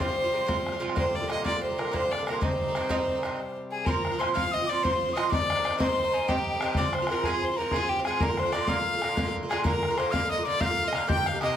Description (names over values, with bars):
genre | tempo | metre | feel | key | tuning
celtic folk, Celtic slip jig | 124 BPM (dotted quarters) | 9/8 | straight | unclear | A4 = 440 Hz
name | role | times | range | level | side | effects
rich fiddle | melody | 0.0-11.6 s | G4 to G5 | -29 LUFS | equal | none
Irish bouzouki | accompaniment | 0.0-11.6 s | G2 to G4 | -30 LUFS | right 4 dB | none
pedal harmonium | drone | 0.0-3.9 s | C3 to G3 | -37 LUFS | left 2 dB | none
bodhran | percussion | 0.0-11.5 s | none | -31 LUFS | left 1 dB | none
mid whistle | second line | 3.7-11.6 s | G5 to G6 | -31 LUFS | left 5 dB | none
room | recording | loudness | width
moderate studio reverb, RT60 0.7 s | none | -24 LUFS | side -9 dB against mid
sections
0.0-3.9 A section; 3.9-11.6 B section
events
stop 3.4-3.9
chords
0.0 Fm; 1.0 Bb; 2.4 Cm; 3.9 Bbsus2; 5.3 Cm; 6.8 Fm; 8.2 Bb